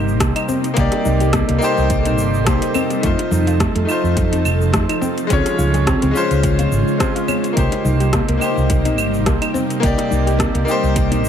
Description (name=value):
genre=sunset chillout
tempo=106 BPM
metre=4/4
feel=swing 55% on 16ths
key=C dorian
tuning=A4 = 441 Hz
part: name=bright grand piano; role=accompaniment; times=0.0-11.3 s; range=Ab3 to D5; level=-21 LUFS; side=moving between left 4 dB and right 3 dB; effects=auto-pan, tape echo
part: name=ethereal airy pad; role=sustained chords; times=0.0-11.3 s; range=C3 to A4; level=-23 LUFS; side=equal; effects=ensemble chorus, built-in reverb
part: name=mellow fretless electric bass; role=bass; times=0.0-11.3 s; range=F1 to F2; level=-18 LUFS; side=right 1 dB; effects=ensemble chorus
part: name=deep house drum kit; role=drums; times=0.1-11.3 s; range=claves, hi-hat, rim click, shaker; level=-24 LUFS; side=right 1 dB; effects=overdrive
part: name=soft round pluck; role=arpeggios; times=0.2-11.2 s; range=A3 to Ab4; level=-24 LUFS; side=left 2 dB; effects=chorus, tape echo
part: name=electronic kick drum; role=drums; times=0.2-11.1 s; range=none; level=-21 LUFS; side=right 1 dB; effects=overdrive
part: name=congas and bongos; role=percussion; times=0.5-11.2 s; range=none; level=-29 LUFS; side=left 2 dB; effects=none
room=light reverb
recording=none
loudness=-14 LUFS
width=side -8 dB against mid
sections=0.0-11.3 A section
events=none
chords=0.0 Cm7; 3.0 F7; 5.3 Dbmaj7; 7.6 Cm7